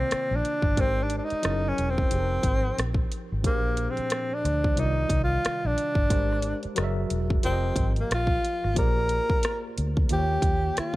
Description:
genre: R&B, neo-soul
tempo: 90 BPM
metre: 4/4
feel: swing 60% on 16ths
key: unclear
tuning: A4 = 440 Hz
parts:
  - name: breathy tenor saxophone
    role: melody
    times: 0.0-11.0 s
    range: Bb3 to Bb4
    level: -28 LUFS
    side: equal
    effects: none
  - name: tine electric piano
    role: accompaniment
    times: 0.0-11.0 s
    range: Bb2 to E5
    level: -33 LUFS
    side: equal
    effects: overdrive, fast stereo tremolo
  - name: vintage muted fingered electric bass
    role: bass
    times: 0.0-10.8 s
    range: E1 to Eb2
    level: -28 LUFS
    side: equal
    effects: none
  - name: pop drum kit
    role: drums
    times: 0.1-11.0 s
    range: hi-hat, kick drum, rim click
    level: -27 LUFS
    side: equal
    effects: none
room: little or no reverb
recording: none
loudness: -23 LUFS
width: side -18 dB against mid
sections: 0.0-8.8 A section; 8.8-11.0 B section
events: tenor saxophone solo 0.0-8.8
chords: 0.0 Cm11; 0.8 Abmaj9#11; 1.4 F#9; 2.1 F9sus4; 3.4 Bb13; 4.8 Cm11; 6.1 Abmaj9#11; 6.8 F#9; 7.4 F9sus4; 8.8 Bb13; 10.1 Eb7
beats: 0.10 | 0.77 1.44 2.10 2.77 | 3.44 4.10 4.77 5.44 | 6.10 6.77 7.44 8.10 | 8.77 9.44 10.10 10.77

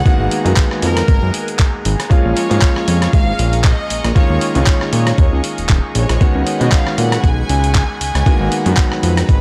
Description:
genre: nu-disco, nu disco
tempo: 117 BPM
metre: 4/4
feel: swing 55% on 16ths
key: G# dorian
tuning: A4 = 438 Hz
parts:
  - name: rich chamber violin section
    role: melody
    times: 0.0-9.4 s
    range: A#4 to G#5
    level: -27 LUFS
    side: equal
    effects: analog delay
  - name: clear grand piano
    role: accompaniment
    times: 0.0-9.4 s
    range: D#3 to F#4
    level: -23 LUFS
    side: equal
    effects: vintage 12-bit sampler grit, sidechain pumping
  - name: lush unison pad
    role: sustained chords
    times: 0.0-9.4 s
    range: G#4 to C#6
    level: -31 LUFS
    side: equal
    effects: chorus, sidechain pumping
  - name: fat analog bass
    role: bass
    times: 0.0-9.4 s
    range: D#1 to B2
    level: -19 LUFS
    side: equal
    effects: tube saturation
  - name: dusty soul sampler-style drum kit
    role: drums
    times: 0.1-9.4 s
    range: handclaps, hi-hat, rim click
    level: -25 LUFS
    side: equal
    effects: none
  - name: electronic kick drum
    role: drums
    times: 0.1-9.4 s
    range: none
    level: -15 LUFS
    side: equal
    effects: none
room: little or no reverb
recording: dry, gritty hardware recording, faint mains hum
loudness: -15 LUFS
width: mono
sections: 0.0-9.4 A section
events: none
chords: 0.1 G#m9; 2.1 A#m7; 4.2 D#7sus4; 6.2 C#7sus4; 8.3 G#m9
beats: | 0.06 0.57 1.08 1.59 | 2.11 2.62 3.13 3.65 | 4.16 4.67 5.18 5.70 | 6.21 6.72 7.24 7.75 | 8.26 8.77 9.29

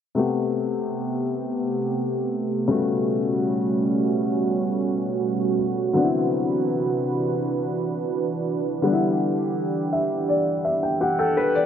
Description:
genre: R&B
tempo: 83 BPM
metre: 4/4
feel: straight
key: A dorian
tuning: A4 = 439 Hz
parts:
  - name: felt-muted upright piano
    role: accompaniment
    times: 0.1-11.7 s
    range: C3 to G5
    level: -23 LUFS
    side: left 3 dB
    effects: none
  - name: warm analog pad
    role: sustained chords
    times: 0.2-11.7 s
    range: B2 to B4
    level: -24 LUFS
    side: right 3 dB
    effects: chorus
room: moderate lush hall reverb, RT60 2.6 s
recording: low-pass filter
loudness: -21 LUFS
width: side -8 dB against mid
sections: 0.2-11.7 A section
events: filter sweep 0.2-11.7; felt piano fill 9.6-11.7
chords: 0.2 Am9; 2.7 A13; 5.9 D13; 8.8 Em7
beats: | 0.16 0.88 1.61 2.33 | 3.05 3.77 4.50 5.22 | 5.94 6.67 7.39 8.11 | 8.83 9.56 10.28 11.00

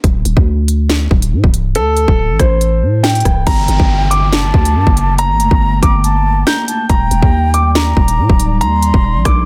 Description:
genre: hip hop, drill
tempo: 140 BPM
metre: 4/4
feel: half-time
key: G harmonic minor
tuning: A4 = 440 Hz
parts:
  - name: growling 808-style bass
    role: bass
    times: 0.0-9.5 s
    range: C1 to Bb2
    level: -16 LUFS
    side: equal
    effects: none
  - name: drill drum kit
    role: drums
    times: 0.0-9.4 s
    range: crash cymbal, hi-hat, kick drum, rim click, snare drum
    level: -16 LUFS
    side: equal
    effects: none
  - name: dark grand piano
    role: melody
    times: 1.8-9.5 s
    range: A4 to G6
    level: -20 LUFS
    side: equal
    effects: low-pass filter, delay
  - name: breathy mellow concert flute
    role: second line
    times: 3.5-9.4 s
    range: G5 to C6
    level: -22 LUFS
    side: equal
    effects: delay
  - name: ethereal airy pad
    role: sustained chords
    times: 4.3-9.5 s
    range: G3 to G5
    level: -26 LUFS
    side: equal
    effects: ensemble chorus, built-in reverb
  - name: downlifter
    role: sound effects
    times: 3.5-6.9 s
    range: none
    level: -29 LUFS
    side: equal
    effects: none
room: digital ambience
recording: dense, heavily limited modern master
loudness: -13 LUFS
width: mono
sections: 0.0-3.5 A section; 3.5-9.5 B section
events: break 0.0-1.8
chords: 0.0 D7(no3); 3.5 Gmadd9; 6.9 Ebmaj7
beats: | 0.04 0.47 0.90 1.32 | 1.75 2.18 2.61 3.04 | 3.47 3.90 4.33 4.75 | 5.18 5.61 6.04 6.47 | 6.90 7.33 7.75 8.18 | 8.61 9.04

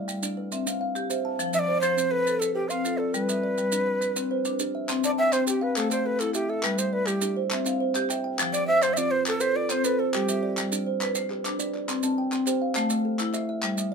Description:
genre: southern african traditional, mbira-style interlocking cycle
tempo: 137 BPM (dotted quarters)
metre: 12/8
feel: straight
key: C major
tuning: A4 = 440 Hz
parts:
  - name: kalimba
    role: arpeggios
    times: 0.0-13.9 s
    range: F3 to A5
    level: -30 LUFS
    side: right 5 dB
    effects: none
  - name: marimba with medium hard mallets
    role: arpeggios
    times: 0.0-13.9 s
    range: F3 to A5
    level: -28 LUFS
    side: left 4 dB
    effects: none
  - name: maracas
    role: percussion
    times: 0.1-13.9 s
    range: none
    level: -32 LUFS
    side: right 5 dB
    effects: none
  - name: breathy Native American-style cedar flute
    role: melody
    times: 1.5-10.7 s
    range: G4 to F5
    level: -25 LUFS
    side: equal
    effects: none
  - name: group handclap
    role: percussion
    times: 4.9-13.8 s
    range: none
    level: -34 LUFS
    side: left 2 dB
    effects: none
room: light reverb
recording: minimal, uncompressed stereo recording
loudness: -23 LUFS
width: side -5 dB against mid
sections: 0.0-4.9 A section; 4.9-13.9 B section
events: none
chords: 0.0 G; 0.5 C; 1.4 F; 3.1 G; 4.9 C; 5.8 Am; 6.6 G5; 7.5 C; 8.4 F; 10.1 G; 11.9 C5; 12.8 Am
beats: 0.08 0.52 0.95 | 1.39 1.83 2.27 2.70 | 3.14 3.58 4.02 4.45 | 4.89 5.33 5.77 6.20 | 6.64 7.08 7.51 7.95 | 8.39 8.83 9.26 9.70 | 10.14 10.57 11.01 11.45 | 11.88 12.32 12.76 13.19 | 13.63

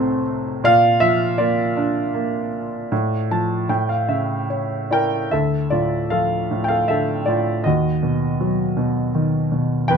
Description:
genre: classical, lyrical solo piano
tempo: 72-81 BPM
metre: 3/4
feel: rubato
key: D minor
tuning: A4 = 439 Hz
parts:
  - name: warm grand piano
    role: solo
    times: 0.0-10.0 s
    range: C2 to C6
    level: -18 LUFS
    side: right 1 dB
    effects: none
room: little or no reverb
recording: close, detailed microphones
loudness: -18 LUFS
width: side -6 dB against mid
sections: 0.0-5.3 A section; 5.3-10.0 B section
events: grand piano fill 2.9-5.3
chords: 0.0 Am/C; 0.6 Bb; 2.9 Dm/A; 3.7 A; 5.3 Dm; 7.6 B/D#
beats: | 0.63 1.38 2.15 | 2.91 3.69 4.50 | 5.32 6.11 6.89 | 7.65 8.40 9.15 | 9.89

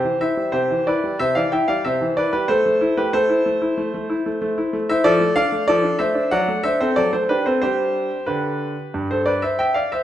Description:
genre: classical-period piano sonatina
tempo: 92 BPM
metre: 4/4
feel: rubato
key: C major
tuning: A4 = 435 Hz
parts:
  - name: bright concert grand piano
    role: solo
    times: 0.0-10.0 s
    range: G2 to G5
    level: -18 LUFS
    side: equal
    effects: none
room: moderate recital hall reverb, RT60 1.5 s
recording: minimal, uncompressed stereo recording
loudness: -18 LUFS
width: side -11 dB against mid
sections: 0.0-10.0 A section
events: none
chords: 0.0 C; 2.5 Am; 5.1 Dm/F; 6.3 D7/F#; 7.6 G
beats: 0.54 1.20 1.85 | 2.50 3.14 3.79 4.43 | 5.06 5.69 6.33 6.98 | 7.63 8.29 8.95 9.61

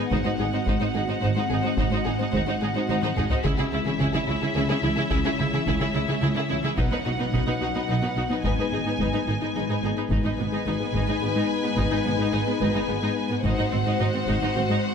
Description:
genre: cinematic, hybrid orchestral and electronic film score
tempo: 72 BPM (dotted quarters)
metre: 6/8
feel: straight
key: unclear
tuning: A4 = 439 Hz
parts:
  - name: rich symphonic violin section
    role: melody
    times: 0.0-14.9 s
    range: E5 to G#5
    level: -31 LUFS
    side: left 2 dB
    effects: none
  - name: warm symphonic violin section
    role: second line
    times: 0.0-14.9 s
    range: E4 to B#4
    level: -32 LUFS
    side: left 2 dB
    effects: none
  - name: rich symphonic viola section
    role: accompaniment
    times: 0.0-14.8 s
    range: B3 to E4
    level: -31 LUFS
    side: right 2 dB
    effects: none
  - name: glassy FM pad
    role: sustained chords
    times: 0.0-14.9 s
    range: F#3 to D#5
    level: -31 LUFS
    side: left 3 dB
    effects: ensemble chorus, built-in reverb
  - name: soft round pluck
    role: arpeggios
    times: 0.0-14.8 s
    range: C#3 to B4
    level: -32 LUFS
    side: left 4 dB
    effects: chorus, digital delay
  - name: rich symphonic cello section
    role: bass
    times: 0.0-14.8 s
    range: G#2 to C#3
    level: -29 LUFS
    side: right 3 dB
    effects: none
  - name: clear chamber double bass section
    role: bass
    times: 0.1-14.6 s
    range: G#1 to C#2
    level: -30 LUFS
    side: right 3 dB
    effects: none
  - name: taiko ensemble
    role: drums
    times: 0.1-14.8 s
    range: none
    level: -30 LUFS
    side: left 1 dB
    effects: none
  - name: mellow French horn section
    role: sustained chords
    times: 10.1-14.9 s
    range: B3 to F#4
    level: -32 LUFS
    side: left 5 dB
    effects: none
room: moderate scoring stage reverb, RT60 1.9 s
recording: none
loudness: -22 LUFS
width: side -7 dB against mid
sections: 0.0-10.1 A section; 10.1-14.9 B section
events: drum fill 3.0-3.4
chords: 0.1 G#7; 3.4 C#m; 6.8 B; 8.4 G#m; 13.4 G#7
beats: | 0.11 0.95 | 1.78 2.61 | 3.45 4.28 | 5.11 5.95 | 6.78 7.61 | 8.45 9.28 | 10.11 10.95 | 11.78 12.61 | 13.45 14.28

